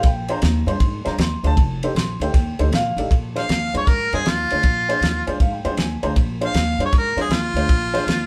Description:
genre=electric blues shuffle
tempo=157 BPM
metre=4/4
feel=swing 66% on 8ths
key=Bb mixolydian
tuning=A4 = 440 Hz
part: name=dark upright piano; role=accompaniment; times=0.0-8.0 s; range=D4 to C6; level=-27 LUFS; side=equal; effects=none
part: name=upright bass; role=bass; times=0.0-8.3 s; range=F1 to Ab2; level=-26 LUFS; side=equal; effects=none
part: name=warm soul drum kit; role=drums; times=0.0-8.2 s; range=kick drum, ride cymbal, snare drum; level=-22 LUFS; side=equal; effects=none
part: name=clear harmonica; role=melody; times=3.4-8.3 s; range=F4 to F5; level=-24 LUFS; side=equal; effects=overdrive
room=light reverb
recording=band playing live in one room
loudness=-20 LUFS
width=mono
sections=0.0-3.1 A section; 3.1-8.3 A section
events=harmonica solo 3.1-8.3; upright piano fill 5.0-6.2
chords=0.0 Bb9; 1.6 F9; 3.1 Bb9

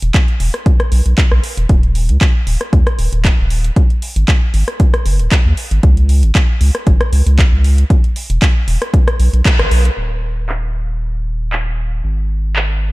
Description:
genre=deep house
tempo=116 BPM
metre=4/4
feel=swing 54% on 16ths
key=unclear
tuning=A4 = 438 Hz
part: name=round analog bass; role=bass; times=0.0-12.9 s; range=Eb1 to Eb2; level=-13 LUFS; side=equal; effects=sidechain pumping
part: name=house drum kit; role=drums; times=0.0-12.7 s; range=crash cymbal, handclaps, hi-hat, rim click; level=-21 LUFS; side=equal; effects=low-pass filter on hats, small room ambience, low-pass filter on snare, low-pass filter on cymbals
part: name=electronic kick drum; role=drums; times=0.1-9.6 s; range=none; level=-12 LUFS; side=equal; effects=small room ambience
room=digital ambience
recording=dark, warm production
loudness=-11 LUFS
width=side -21 dB against mid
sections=0.0-10.0 A section; 10.0-12.9 B section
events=band accent 9.5; filter sweep on drum 10.0-12.9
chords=none

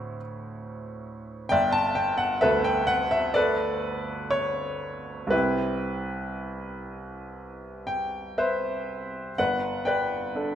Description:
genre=classical, impressionist solo piano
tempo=57-68 BPM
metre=4/4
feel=rubato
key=unclear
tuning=A4 = 439 Hz
part: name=clear baby grand piano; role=solo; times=0.0-10.6 s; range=G1 to A5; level=-25 LUFS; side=equal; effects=none
room=wet recital hall reverb, RT60 1.8 s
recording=none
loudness=-24 LUFS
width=side -10 dB against mid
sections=0.0-10.6 A section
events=none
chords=0.0 Dsus2; 1.5 G69; 5.3 Cmaj7; 9.4 Gadd9

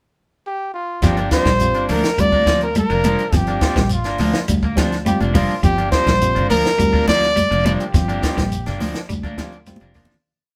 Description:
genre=afrobeat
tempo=104 BPM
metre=4/4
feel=straight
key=G minor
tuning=A4 = 438 Hz
part: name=warm trumpet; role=melody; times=0.5-8.9 s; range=F4 to D5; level=-22 LUFS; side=equal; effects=none
part: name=barky tine electric piano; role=accompaniment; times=1.0-9.9 s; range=G3 to F4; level=-30 LUFS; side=equal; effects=none
part: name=clean electric guitar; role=arpeggios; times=1.0-10.1 s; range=F3 to Bb3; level=-27 LUFS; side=equal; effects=none
part: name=electric guitar at the edge of break-up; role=stabs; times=1.0-10.1 s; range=F3 to D4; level=-28 LUFS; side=equal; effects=none
part: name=fingered electric bass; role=bass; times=1.0-10.1 s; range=F1 to D2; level=-25 LUFS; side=equal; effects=none
part: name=compact cocktail drum kit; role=drums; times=1.0-10.2 s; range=hi-hat, kick drum, snare drum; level=-24 LUFS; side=equal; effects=none
part: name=congas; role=percussion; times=1.0-10.3 s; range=none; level=-26 LUFS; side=equal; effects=none
part: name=shekere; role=percussion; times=1.0-10.2 s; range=none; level=-31 LUFS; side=equal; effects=none
room=moderate stone room reverb, RT60 0.9 s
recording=band playing live in one room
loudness=-18 LUFS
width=mono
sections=0.0-1.0 pickup bar; 1.0-10.2 groove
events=fade-out 7.9-10.2; drum fill 9.7-10.2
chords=0.0 N.C.; 1.0 Gm7

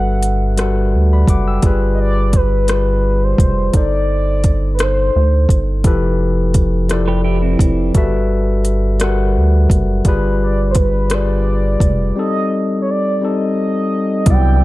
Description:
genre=slow six-eight R&B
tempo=57 BPM (dotted quarters)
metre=6/8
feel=straight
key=G major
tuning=A4 = 440 Hz
part: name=mellow horn-like synth lead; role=melody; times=0.0-5.6, 10.4-14.6 s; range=B4 to G5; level=-21 LUFS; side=right 1 dB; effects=chorus, phaser
part: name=tine electric piano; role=accompaniment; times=0.0-14.6 s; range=C3 to E6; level=-19 LUFS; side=left 3 dB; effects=none
part: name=rubbery square bass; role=bass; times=0.0-14.6 s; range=F1 to D2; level=-16 LUFS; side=equal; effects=none
part: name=smooth R&B drum kit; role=drums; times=0.2-14.4 s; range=hi-hat, kick drum, rim click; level=-15 LUFS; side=equal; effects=overdrive
part: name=clean electric guitar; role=second line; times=7.1-7.9 s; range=C4 to B4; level=-24 LUFS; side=right 6 dB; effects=tape echo
part: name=tonewheel organ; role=sustained chords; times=14.3-14.6 s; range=C3 to E4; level=-27 LUFS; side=right 2 dB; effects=chorus vibrato, fast rotary speaker
room=light reverb, digital ambience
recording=dark, warm production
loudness=-13 LUFS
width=side -18 dB against mid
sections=0.0-14.3 A section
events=break 12.2-14.3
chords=0.0 Gmaj13; 1.6 G7b9; 3.7 Cm6/G; 5.8 Fmaj9#11; 7.9 Gmaj13; 10.1 G7b9; 12.2 Cm6/G

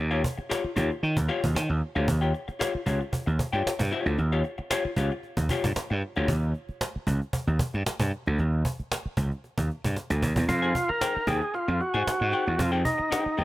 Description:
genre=funk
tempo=114 BPM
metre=4/4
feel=straight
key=Eb mixolydian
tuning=A4 = 440 Hz
part: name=gritty slap bass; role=bass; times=0.0-13.4 s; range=Db2 to Eb3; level=-26 LUFS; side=right 1 dB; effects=overdrive
part: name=vintage hollow-body jazz guitar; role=accompaniment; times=0.1-6.3, 10.5-13.4 s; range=Eb4 to Ab5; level=-31 LUFS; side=left 4 dB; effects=none
part: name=cajon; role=drums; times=0.1-13.4 s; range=none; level=-30 LUFS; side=right 1 dB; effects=none
part: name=overdriven tonewheel organ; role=melody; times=10.5-13.4 s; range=Eb4 to Bb4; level=-26 LUFS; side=equal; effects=none
room=light reverb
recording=none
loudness=-25 LUFS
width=side -17 dB against mid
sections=0.0-10.5 A section; 10.5-13.4 B section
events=drum fill 10.0-10.5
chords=0.0 Eb9; 10.5 Fm9

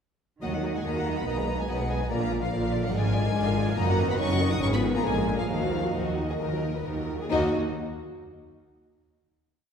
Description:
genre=quick classical-period movement for symphony orchestra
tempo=131-145 BPM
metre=4/4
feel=straight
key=Eb minor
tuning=A4 = 439 Hz
part: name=warm chamber violin section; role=melody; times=0.4-7.6 s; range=Eb5 to Eb6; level=-34 LUFS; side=left 3 dB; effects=none
part: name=warm chamber violin section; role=second line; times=0.4-7.6 s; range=Eb4 to Gb5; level=-33 LUFS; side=left 2 dB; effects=none
part: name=dark symphonic viola section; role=accompaniment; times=0.4-7.5 s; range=D3 to Gb4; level=-33 LUFS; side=right 3 dB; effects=none
part: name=mellow French horn section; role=sustained chords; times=0.4-7.5 s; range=Eb3 to Eb4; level=-31 LUFS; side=left 2 dB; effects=none
part: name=dark chamber double bass section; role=bass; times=0.4-7.6 s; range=Gb1 to Eb2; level=-32 LUFS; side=right 1 dB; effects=none
part: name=dark symphonic cello section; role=bass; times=0.4-7.6 s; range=Eb2 to Eb3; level=-31 LUFS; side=right 1 dB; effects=none
room=wet concert hall reverb, RT60 1.9 s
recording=heard from further back in the room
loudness=-24 LUFS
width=side -7 dB against mid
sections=0.4-7.3 A section; 7.3-9.1 final chord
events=none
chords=0.4 Ebm; 1.3 Abm/Cb; 2.1 Bb; 2.9 Bb7/Ab; 3.8 Ebm/Gb; 4.6 Fm7b5/Ab; 5.1 Bb7; 5.5 Ebm

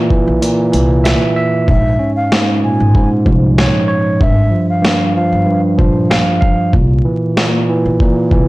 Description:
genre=hip hop, boom-bap hip-hop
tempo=95 BPM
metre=4/4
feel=swing 54% on 16ths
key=F harmonic minor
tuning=A4 = 439 Hz
part: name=tine electric piano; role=accompaniment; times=0.0-8.5 s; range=G2 to F5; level=-13 LUFS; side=right 1 dB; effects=cassette tape
part: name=boom bap sampler-style drum kit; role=drums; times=0.1-8.5 s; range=hi-hat, kick drum, snare drum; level=-14 LUFS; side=equal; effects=none
part: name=upright bass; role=bass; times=0.3-8.5 s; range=G1 to C2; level=-15 LUFS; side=equal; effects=tube saturation
part: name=breathy mellow concert flute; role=melody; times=1.7-5.6 s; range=E5 to Ab5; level=-20 LUFS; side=left 1 dB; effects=digital delay
room=light reverb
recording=blown-out, overdriven recording, vinyl crackle, overdrive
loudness=-11 LUFS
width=side -19 dB against mid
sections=0.0-8.5 A section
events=kick muted 0.4-1.7; hi-hats muted 1.7-8.5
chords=0.0 C7; 1.7 Bbm7; 4.2 Fsus2; 6.7 C7

